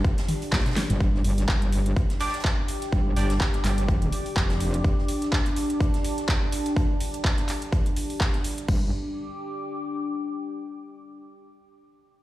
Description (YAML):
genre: bass house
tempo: 125 BPM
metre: 4/4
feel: swing 56% on 16ths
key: unclear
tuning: A4 = 441 Hz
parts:
  - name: metallic wobble bass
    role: bass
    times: 0.0-4.8, 8.7-8.9 s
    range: F1 to Bb1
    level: -24 LUFS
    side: equal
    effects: chorus, tube saturation, sidechain pumping
  - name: electronic kick drum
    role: drums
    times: 0.0-8.8 s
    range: none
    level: -24 LUFS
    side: equal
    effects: overdrive
  - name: soft-mallet drum kit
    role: drums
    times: 0.0-8.6 s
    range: hi-hat, snare drum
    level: -42 LUFS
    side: right 2 dB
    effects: sidechain pumping on hats, high-pass filter on hats, high-pass filter on snare, high-pass filter on room
  - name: deep dark ambient pad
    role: texture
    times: 0.0-10.6 s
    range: D4 to D6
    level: -31 LUFS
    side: left 1 dB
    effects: chorus, built-in reverb, sidechain pumping
  - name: big-room dance drum kit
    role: drums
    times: 0.2-8.8 s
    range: crash cymbal, handclaps, hi-hat, snare drum, toms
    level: -30 LUFS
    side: equal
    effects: overdrive
  - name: band-passed chord stab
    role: stabs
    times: 2.2-3.3 s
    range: D4 to D5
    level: -33 LUFS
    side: right 2 dB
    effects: chorus, sidechain pumping, dub echo
room: digital ambience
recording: played on a big sound system in a bare room, stone room reverb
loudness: -23 LUFS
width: side -16 dB against mid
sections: 0.0-1.0 A section; 1.0-8.7 B section; 8.7-10.6 C section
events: drop 0.0-1.0; drum fill 0.3-1.0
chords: 0.0 G5